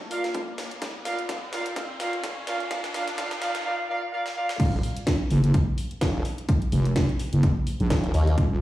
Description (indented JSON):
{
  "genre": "bass house",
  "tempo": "127 BPM",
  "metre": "4/4",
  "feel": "swing 56% on 16ths",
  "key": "Eb harmonic minor",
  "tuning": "A4 = 440 Hz",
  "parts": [
    { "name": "riser", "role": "sound effects", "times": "0.0-3.7 s", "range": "none", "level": "-38 LUFS", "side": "equal", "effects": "none" },
    { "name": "mellow horn section", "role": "stabs", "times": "0.1-4.5 s", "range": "F4 to F5", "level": "-29 LUFS", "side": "right 1 dB", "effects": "sidechain pumping, tape echo" },
    { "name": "house drum kit", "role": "drums", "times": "0.1-8.5 s", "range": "crash cymbal, hi-hat, snare drum", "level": "-33 LUFS", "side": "equal", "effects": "high-pass filter on hats, high-pass filter on snare, high-pass filter on cymbals, high-pass filter on room" },
    { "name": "electronic kick drum", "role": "drums", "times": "0.3-8.5 s", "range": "none", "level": "-26 LUFS", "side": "equal", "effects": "overdrive, high-pass filter on kick, high-pass filter on room" },
    { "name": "wobble bass", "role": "bass", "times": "4.6-8.6 s", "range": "Eb1 to Bb1", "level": "-22 LUFS", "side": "equal", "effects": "chorus, tube saturation, sidechain pumping" },
    { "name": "formant-sweep wobble bass", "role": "bass", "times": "6.0-8.4 s", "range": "Eb1 to Eb2", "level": "-22 LUFS", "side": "equal", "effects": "chorus, tube saturation, sidechain pumping" }
  ],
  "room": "moderate lush hall reverb, RT60 1.6 s, digital ambience",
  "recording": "played on a big sound system in a bare room, large studio reverb, high-pass filter, studio ambience",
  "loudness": "-23 LUFS",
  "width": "side -15 dB against mid",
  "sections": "0.0-4.6 A section; 4.6-8.6 B section",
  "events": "build-up 0.0-4.6; drum fill 0.0-3.7, 4.2-4.6; riser 0.0-3.7; drop 4.6-8.6",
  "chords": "0.0 Bb; 4.6 Ebmadd9",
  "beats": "0.34 | 0.82 1.29 1.76 2.23 | 2.71 3.18 3.65 4.12 | 4.60 5.07 5.54 6.01 | 6.49 6.96 7.43 7.90 | 8.38"
}